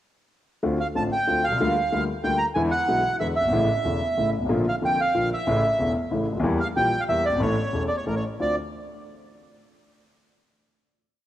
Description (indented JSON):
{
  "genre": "tango",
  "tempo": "185 BPM",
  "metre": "3/4",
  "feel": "rubato",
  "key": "D minor",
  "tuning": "A4 = 441 Hz",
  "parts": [
    { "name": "warm concert grand piano", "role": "accompaniment", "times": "0.6-8.5 s", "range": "E1 to A4", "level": "-24 LUFS", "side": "left 1 dB", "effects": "cassette tape" },
    { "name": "bandoneon", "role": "melody", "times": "0.8-8.6 s", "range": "Bb4 to Bb5", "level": "-24 LUFS", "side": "right 2 dB", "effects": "cassette tape" }
  ],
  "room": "moderate lush hall reverb, RT60 2.4 s",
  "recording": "home recording on cassette",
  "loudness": "-21 LUFS",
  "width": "side -12 dB against mid",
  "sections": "0.6-8.4 variation; 8.4-9.4 final chord",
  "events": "none",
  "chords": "0.6 Dm7; 1.6 Bb6/D; 2.6 E7; 3.5 A; 4.5 Bb; 5.5 A; 6.4 Edim; 7.4 A; 8.4 Dm7"
}